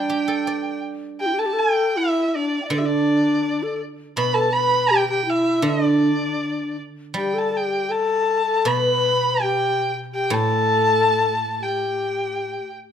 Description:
chinese traditional, Chinese chamber ensemble; 81 BPM; 2/4; rubato; G gong mode; A4 = 440 Hz
rich erhu; melody; 0.0-12.7 s; D5 to B5; -22 LUFS; right 1 dB
guzheng; accompaniment; 0.0-12.5 s; A2 to D5; -24 LUFS; right 4 dB
breathy mellow low xiao; second line; 1.2-12.7 s; D4 to G5; -22 LUFS; left 4 dB
light reverb; close, detailed microphones; -18 LUFS; side -8 dB against mid
0.0-1.2 A section; 1.2-12.9 B section

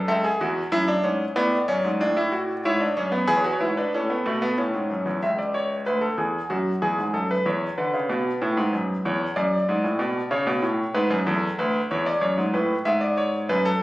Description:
classical, baroque-style 3-part fugue for grand piano; 94 BPM; 4/4; straight; A4 = 444 Hz
bright concert grand piano; solo; 0.0-13.8 s; C#2 to E5; -21 LUFS; equal
moderate stone room reverb, RT60 0.9 s; recorded on a phone in the room, club reverb, compression; -21 LUFS; side -17 dB against mid
0.0-5.2 A section; 5.2-13.8 B section
0.1 A/C#; 1.4 Bm7; 2.6 E7; 3.9 A; 5.2 C#m; 6.5 F#m7; 7.8 Bm; 9.1 E; 10.3 F#m; 11.6 Bm/D; 12.9 E/G#

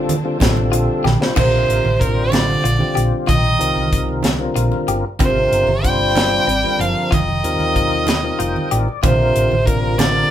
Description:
electric jazz fusion; 63 BPM (dotted quarters); 6/8; straight; Bb major; A4 = 440 Hz
mellow tonewheel organ; accompaniment; 0.0-10.3 s; D3 to G5; -22 LUFS; left 2 dB; chorus vibrato, slow rotary speaker
rich symphonic string section; sustained chords; 0.0-1.3 s; C3 to D4; -34 LUFS; left 2 dB
crisp fusion drum kit; drums; 0.1-10.1 s; crash cymbal, hi-hat, kick drum, snare drum; -20 LUFS; equal
congas; percussion; 0.1-10.2 s; -25 LUFS; right 5 dB
hollow-body short-scale fingered electric bass; bass; 0.4-10.2 s; F1 to Eb2; -20 LUFS; equal
clean electric guitar; stabs; 0.7-9.2 s; C4 to G4; -25 LUFS; left 4 dB
clear violin; melody; 1.4-10.3 s; Bb4 to G5; -19 LUFS; right 1 dB
mellow bass clarinet; second line; 1.4-10.3 s; Bb2 to G3; -24 LUFS; right 3 dB
wet studio reverb, RT60 0.5 s; band playing live in one room; -14 LUFS; side -11 dB against mid
0.0-1.4 A section; 1.4-10.3 B section
drum fill 1.1-1.4; tonewheel organ fill 8.1-9.0
0.0 Bbmaj9; 3.3 Eb69/Bb; 5.2 Abmaj7; 7.1 F9sus4; 9.0 Bbmaj7

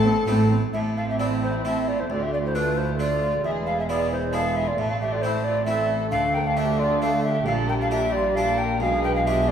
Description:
classical, baroque-style concerto movement with solo episodes; 134 BPM; 3/4; straight; A minor; A4 = 435 Hz
mellow hollow tenor recorder; melody; 0.0-9.5 s; A4 to G5; -25 LUFS; equal
warm chamber violin section; melody; 0.0-9.5 s; C4 to A5; -35 LUFS; left 5 dB
dark studio violin section; second line; 0.0-9.5 s; D4 to B4; -32 LUFS; left 1 dB
dark chamber viola section; accompaniment; 0.0-9.5 s; G3 to C4; -31 LUFS; right 2 dB
harpsichord; accompaniment; 0.0-9.5 s; D2 to G4; -30 LUFS; right 1 dB
dark chamber cello section; bass; 0.0-9.5 s; D2 to D3; -29 LUFS; equal
rich studio double bass section; bass; 0.0-9.5 s; E1 to D2; -28 LUFS; right 3 dB
wet recital hall reverb, RT60 1.4 s; heard from further back in the room; -21 LUFS; side -8 dB against mid
0.7-9.5 A section
0.0 Am; 2.1 Dm; 3.4 E; 4.8 Am; 6.1 D5; 7.5 Gm/Bb; 8.8 Bdim7

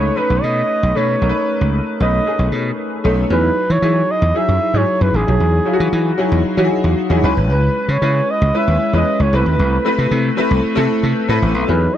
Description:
polished 1980s jazz-funk pop; 115 BPM; 4/4; straight; E major; A4 = 441 Hz
warm flugelhorn; melody; 0.0-12.0 s; G#4 to E5; -20 LUFS; right 2 dB
clear grand piano; accompaniment; 0.0-12.0 s; F#3 to C#5; -18 LUFS; left 2 dB; ensemble chorus
gritty slap bass; bass; 0.0-11.9 s; G#1 to E3; -16 LUFS; equal; overdrive
little or no reverb; dry, close 1970s-style studio recording; -14 LUFS; side -10 dB against mid
0.0-3.3 A section; 3.3-12.0 B section
0.0 B9; 3.3 Emaj9; 7.2 C#m7; 9.3 Amadd9/C

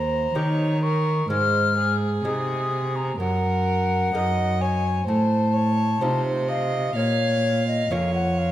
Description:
classical, baroque-style sonata movement with continuo; 63 BPM; 4/4; rubato; Bb minor from 3.2 s; A4 = 440 Hz
concert flute; melody; 0.0-8.5 s; Db5 to F6; -25 LUFS; left 4 dB
warm violin; second line; 0.0-8.5 s; Ab4 to F5; -28 LUFS; right 4 dB
lute; accompaniment; 0.0-8.5 s; Eb2 to Bb4; -32 LUFS; equal
rich cello; bass; 0.0-8.5 s; Eb2 to Eb3; -24 LUFS; right 1 dB
wet recital hall reverb, RT60 1.5 s; dark, warm production; -20 LUFS; side -13 dB against mid
0.0-8.5 A section
0.0 Eb; 1.3 Ab; 3.2 Ebm/Gb; 5.1 F7/A; 7.0 Bbm

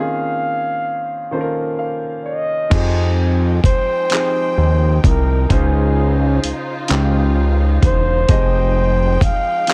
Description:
slow six-eight R&B; 43 BPM (dotted quarters); 6/8; straight; F minor; A4 = 440 Hz
breathy flugelhorn; melody; 0.0-9.7 s; Ab4 to F5; -23 LUFS; equal
warm concert grand piano; accompaniment; 0.0-9.7 s; Db3 to F5; -26 LUFS; equal
warm symphonic string section; sustained chords; 2.7-9.7 s; Ab3 to G5; -31 LUFS; equal
fat analog bass; bass; 2.7-9.3 s; E1 to F2; -18 LUFS; equal
dusty soul sampler-style drum kit; drums; 2.7-9.7 s; crash cymbal, handclaps, hi-hat, kick drum; -19 LUFS; equal
small room ambience; -17 LUFS; mono
0.0-2.7 A section; 2.7-9.7 B section
break 0.0-2.7; grand piano fill 1.3-2.7
0.0 Eb13sus4; 2.7 Fm9; 5.5 Dbmaj9; 8.3 Fm9

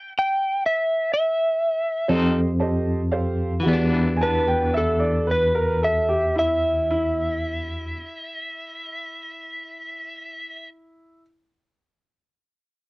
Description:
slow blues; 37-43 BPM (dotted quarters); 12/8; straight; E minor; A4 = 437 Hz
electric slide guitar; melody; 0.0-10.7 s; A4 to A5; -23 LUFS; equal; cassette tape
clear upright piano; accompaniment; 2.1-8.0 s; F#4 to A5; -30 LUFS; right 2 dB; cassette tape
electric guitar at the edge of break-up; accompaniment; 2.1-8.1 s; E3 to A4; -29 LUFS; left 1 dB; tremolo, cassette tape
overdriven tine electric piano; bass; 2.1-8.0 s; E2 to F2; -24 LUFS; equal; fast tremolo
warm upright piano; second line; 4.2-11.2 s; E4 to A5; -28 LUFS; right 1 dB; cassette tape
little or no reverb; home recording on cassette; -20 LUFS; side -22 dB against mid
0.0-3.7 A section; 3.7-10.1 B section
slowing down 0.0-3.7; stop 0.0-2.1; upright piano fill 2.1-3.7
0.0 Em; 2.1 F7; 3.7 Em7

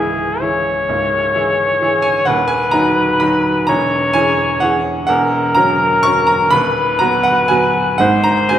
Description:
classical, romantic duo for cor anglais and grand piano; 39-44 BPM (dotted quarters); 6/8; rubato; B major; A4 = 440 Hz
mellow cor anglais; melody; 0.0-8.6 s; G#4 to C#5; -15 LUFS; left 2 dB
bright baby grand piano; accompaniment; 0.0-8.6 s; C#1 to C#6; -15 LUFS; right 2 dB
wet recital hall reverb, RT60 1.8 s; -12 LUFS; side -10 dB against mid
0.0-8.6 A section
0.0 C#m; 2.3 B/D#; 3.7 C#m/E; 5.1 F#7/E; 6.5 B/D#; 8.0 G#7

